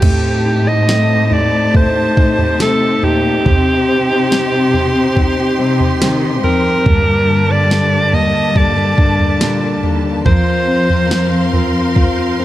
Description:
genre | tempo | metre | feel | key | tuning
pop ballad | 70 BPM | 4/4 | straight | unclear | A4 = 440 Hz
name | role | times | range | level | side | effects
bright alto saxophone | melody | 0.0-11.5 s | G4 to Eb5 | -16 LUFS | right 1 dB | none
tine electric piano | accompaniment | 0.0-12.4 s | D3 to F4 | -18 LUFS | left 4 dB | none
clear studio string section | sustained chords | 0.0-12.4 s | Bb3 to C6 | -23 LUFS | right 1 dB | none
fingerpicked plugged-in steel-string acoustic guitar | arpeggios | 0.0-12.4 s | G2 to Bb4 | -24 LUFS | right 3 dB | none
dark studio cello section | bass | 0.0-12.4 s | Eb2 to Eb3 | -18 LUFS | equal | none
smooth R&B drum kit | drums | 0.0-12.2 s | crash cymbal, kick drum, snare drum, toms | -16 LUFS | right 1 dB | none
room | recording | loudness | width
light reverb, small room ambience | none | -11 LUFS | side -14 dB against mid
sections
0.0-12.4 A section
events
none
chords
0.0 Am7b5; 3.5 Cm; 6.9 Gmadd9; 10.3 Fsus4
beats
| 0.03 0.88 1.74 2.60 | 3.46 4.31 5.17 6.01 | 6.86 7.71 8.55 9.40 | 10.26 11.11 11.96

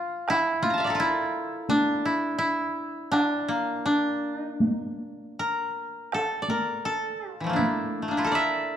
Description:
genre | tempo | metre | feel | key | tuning
japanese traditional, Japanese chamber music | 78-87 BPM | 4/4 | rubato | D hirajoshi | A4 = 439 Hz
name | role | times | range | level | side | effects
koto | melody | 0.0-8.8 s | E3 to Bb5 | -25 LUFS | equal | none
taiko ensemble | percussion | 0.3-7.8 s | none | -29 LUFS | right 1 dB | none
room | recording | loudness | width
moderate recital hall reverb, RT60 1.6 s | dark, warm production | -24 LUFS | side -9 dB against mid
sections
0.0-8.8 A section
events
none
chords
none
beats
| 0.27 0.97 1.69 2.40 | 3.12 3.85 4.60 5.36 | 6.11 6.84 7.58 8.32

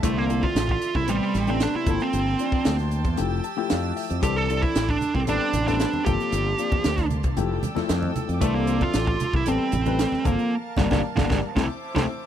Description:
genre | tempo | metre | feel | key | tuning
electric jazz fusion | 114 BPM | 4/4 | straight | C mixolydian | A4 = 442 Hz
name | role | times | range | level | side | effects
smooth overdriven lead guitar | melody | 0.0-12.0 s | G3 to A4 | -25 LUFS | right 4 dB | none
dark grand piano | accompaniment | 0.0-12.0 s | C3 to A5 | -29 LUFS | left 14 dB | none
rich chamber string section | sustained chords | 0.0-12.3 s | Bb3 to E6 | -34 LUFS | right 2 dB | none
fretless electric bass | bass | 0.0-12.1 s | F1 to F2 | -26 LUFS | equal | lush chorus
crisp fusion drum kit | drums | 0.0-12.1 s | hi-hat, kick drum, snare drum | -27 LUFS | equal | none
congas | percussion | 5.0-12.1 s | none | -31 LUFS | right 3 dB | none
room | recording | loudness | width
little or no reverb | none | -21 LUFS | side -10 dB against mid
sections
0.0-12.3 A section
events
grand piano fill 3.2-4.2; band accent 10.5-12.3; drum fill 12.1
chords
0.0 C69; 1.1 Am9; 1.9 Gm11; 3.2 Fmaj9; 4.2 C69; 5.3 Am9; 6.1 Gm11; 7.4 Fmaj9; 8.4 C69; 9.5 Am9; 10.3 Gm11; 11.6 C69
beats
| 0.03 0.56 1.08 1.60 | 2.13 2.65 3.18 3.70 | 4.23 4.75 5.28 5.80 | 6.32 6.85 7.37 7.90 | 8.42 8.94 9.47 9.99 | 10.52 11.04 11.56 12.09

